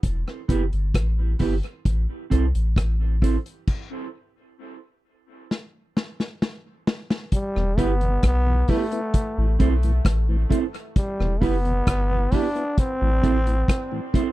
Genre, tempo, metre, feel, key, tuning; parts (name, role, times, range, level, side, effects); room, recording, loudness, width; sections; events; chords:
dub reggae; 66 BPM; 4/4; straight; E minor; A4 = 440 Hz
soft dub sub bass; bass; 0.0-13.6 s; E1 to C2; -22 LUFS; equal
vintage drum kit; drums; 0.0-14.3 s; crash cymbal, hi-hat, kick drum, rim click, snare drum; -23 LUFS; equal
mellow electric guitar; accompaniment; 0.5-14.3 s; B3 to C5; -28 LUFS; right 7 dB; dub echo
growling trombone; melody; 7.3-14.1 s; G3 to D4; -27 LUFS; equal; dub echo
mellow tonewheel organ; accompaniment; 7.6-14.2 s; E2 to E4; -31 LUFS; left 3 dB; overdrive, chorus vibrato, slow rotary speaker
little or no reverb; dry, close 1970s-style studio recording; -20 LUFS; side -16 dB against mid
0.0-7.3 A section; 7.3-14.3 B section
break 0.0-7.3; stop 3.7-7.3; drum fill 5.5-7.3
0.0 Em; 1.9 Am; 3.7 N.C.; 7.3 Em; 9.1 Am; 11.0 Em; 12.8 Am